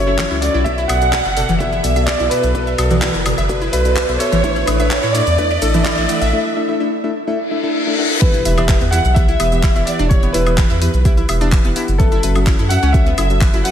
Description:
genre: progressive house.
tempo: 127 BPM.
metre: 4/4.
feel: straight.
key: E dorian.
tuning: A4 = 444 Hz.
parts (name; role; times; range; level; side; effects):
clear concert grand piano; melody; 0.0-13.7 s; A4 to F#5; -22 LUFS; right 1 dB; analog delay.
dark studio violin section; second line; 0.0-13.7 s; A4 to F#5; -25 LUFS; right 1 dB; sidechain pumping, analog delay.
analog pluck; arpeggios; 0.0-13.7 s; E3 to E6; -24 LUFS; equal; chorus, sidechain pumping, analog delay.
deep mellow chord stab; stabs; 0.0-13.7 s; B2 to F#5; -20 LUFS; left 2 dB; chorus, sidechain pumping, analog delay.
saturated sub bass; bass; 0.0-13.6 s; E1 to A2; -18 LUFS; equal; tube saturation, sidechain pumping.
riser, reverse cymbal and impact; sound effects; 0.2-10.1 s; none; -25 LUFS; equal; none.
deep house drum kit; drums; 0.2-13.7 s; handclaps, hi-hat, shaker, woodblock; -24 LUFS; left 1 dB; overdrive, sidechain pumping on hats, sidechain pumping on perc.
electronic kick drum; drums; 0.2-13.5 s; none; -15 LUFS; equal; overdrive, high-pass filter on kick, high-pass filter on room.
room: moderate lush hall reverb, RT60 1.8 s.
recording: dreamy mix soaked in reverb.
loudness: -13 LUFS.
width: side -9 dB against mid.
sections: 0.0-8.2 A section; 8.2-13.7 B section.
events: build-up 0.0-8.2; riser 0.2-6.3; break 6.3-8.2; reverse cymbal 7.5-8.2; drop 8.2-13.7; impact 8.2-10.1.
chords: 0.0 F#m7; 0.7 Bm7; 4.4 Asus4; 8.2 Em; 12.0 F#m7.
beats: 0.19 | 0.66 1.13 1.60 2.08 | 2.55 3.02 3.49 3.96 | 4.44 4.91 5.38 5.86 | 6.33 6.80 7.27 7.75 | 8.22 8.69 9.16 9.63 | 10.11 10.58 11.05 11.52 | 12.00 12.47 12.94 13.41.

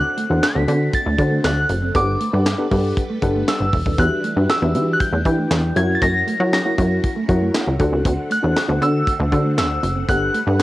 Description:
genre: early-eighties boogie funk.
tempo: 118 BPM.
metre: 4/4.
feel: straight.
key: unclear.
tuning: A4 = 440 Hz.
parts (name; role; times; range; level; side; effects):
glassy synth bell; melody; 0.0-10.6 s; D6 to B6; -22 LUFS; equal; chorus, tremolo, cassette tape, plate reverb.
mellow FM electric piano; accompaniment; 0.0-10.6 s; D4 to G5; -23 LUFS; left 1 dB; chorus, cassette tape, plate reverb.
phased string machine; sustained chords; 0.0-10.6 s; D3 to F#5; -32 LUFS; equal; ensemble chorus, phaser, cassette tape, plate reverb.
plucky analog bass; bass; 0.0-10.6 s; D#1 to F#3; -20 LUFS; equal; none.
mellow electric guitar; riff; 0.2-10.6 s; A3 to D4; -28 LUFS; right 4 dB; lush chorus, cassette tape.
tight funk drum kit; drums; 0.2-10.6 s; handclaps, hi-hat, kick drum, snare drum; -22 LUFS; equal; cassette tape.
room: light reverb.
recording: home recording on cassette.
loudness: -16 LUFS.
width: side -16 dB against mid.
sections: 0.0-10.6 A section.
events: none.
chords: 0.0 D7; 2.0 Gmaj9; 4.0 Em9; 5.8 F#7; 7.8 D7; 10.1 Gmaj9.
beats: 0.43 0.94 1.44 | 1.95 2.46 2.97 3.48 | 3.99 4.49 5.00 5.51 | 6.02 6.53 7.04 7.54 | 8.05 8.56 9.07 9.58 | 10.09 10.60.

